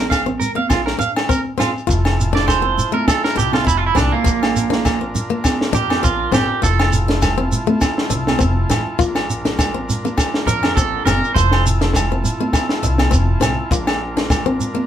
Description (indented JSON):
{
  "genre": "highlife guitar band",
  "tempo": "101 BPM",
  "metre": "4/4",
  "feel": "swing 55% on 16ths",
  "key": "F major",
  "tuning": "A4 = 438 Hz",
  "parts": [
    { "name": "picked plugged-in swing-style acoustic guitar", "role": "accompaniment", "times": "0.0-14.9 s", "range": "A3 to F4", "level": "-23 LUFS", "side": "left 5 dB", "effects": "none" },
    { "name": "electric guitar at the edge of break-up", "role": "arpeggios", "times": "0.0-11.6 s", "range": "Bb3 to F5", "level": "-19 LUFS", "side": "right 6 dB", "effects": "none" },
    { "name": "upright bass", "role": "bass", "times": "0.0-14.6 s", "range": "F1 to F2", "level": "-21 LUFS", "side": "equal", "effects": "none" },
    { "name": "compact cocktail drum kit", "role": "drums", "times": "0.1-14.5 s", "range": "kick drum, snare drum", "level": "-20 LUFS", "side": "equal", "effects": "none" },
    { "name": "agogo bells", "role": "percussion", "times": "0.1-14.5 s", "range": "none", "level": "-25 LUFS", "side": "equal", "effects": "none" },
    { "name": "shekere", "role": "percussion", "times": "0.1-14.8 s", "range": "none", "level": "-24 LUFS", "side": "right 2 dB", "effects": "none" },
    { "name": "congas", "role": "percussion", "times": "0.3-14.9 s", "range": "none", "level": "-26 LUFS", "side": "right 3 dB", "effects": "none" },
    { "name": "combo organ", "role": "sustained chords", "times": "1.9-14.9 s", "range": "D4 to Bb4", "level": "-27 LUFS", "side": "right 1 dB", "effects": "none" }
  ],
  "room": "wet small room reverb, RT60 0.6 s",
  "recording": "band playing live in one room",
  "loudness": "-15 LUFS",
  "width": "side -10 dB against mid",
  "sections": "0.0-1.9 A section; 1.9-14.9 B section",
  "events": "clean electric guitar solo 1.9-14.9",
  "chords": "0.0 Bb; 1.9 Fmaj7; 4.3 Bb; 6.6 Fmaj7; 9.0 Bb; 11.4 Fmaj7; 13.7 Bb"
}